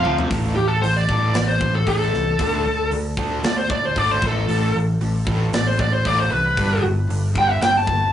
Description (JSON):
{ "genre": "hard rock", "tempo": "115 BPM", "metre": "4/4", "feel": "straight", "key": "A minor", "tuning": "A4 = 440 Hz", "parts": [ { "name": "bluesy overdriven lead guitar", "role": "melody", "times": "0.0-8.1 s", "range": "G4 to A5", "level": "-21 LUFS", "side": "left 1 dB", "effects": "distortion, analog delay" }, { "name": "overdriven semi-hollow guitar", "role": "riff", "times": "0.0-8.1 s", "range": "F2 to D4", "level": "-29 LUFS", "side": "left 2 dB", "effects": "tremolo" }, { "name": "overdriven semi-hollow guitar", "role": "riff", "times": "0.0-8.1 s", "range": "F2 to D4", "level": "-27 LUFS", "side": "right 3 dB", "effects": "none" }, { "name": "overdriven picked electric bass", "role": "bass", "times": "0.1-8.1 s", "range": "G1 to D2", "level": "-23 LUFS", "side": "equal", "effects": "none" }, { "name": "tight metal drum kit", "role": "drums", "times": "0.1-8.0 s", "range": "hi-hat, kick drum, snare drum, toms", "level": "-26 LUFS", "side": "equal", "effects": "none" } ], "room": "wet small room reverb, RT60 0.5 s", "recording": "rough rehearsal-room recording, tube saturation, nothing above 10.8 kHz", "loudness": "-17 LUFS", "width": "side -10 dB against mid", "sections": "0.3-8.1 A section", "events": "drum fill 0.0; lead electric guitar solo 0.3-8.1", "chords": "0.3 Am; 2.4 D5; 4.2 A5; 6.6 G5" }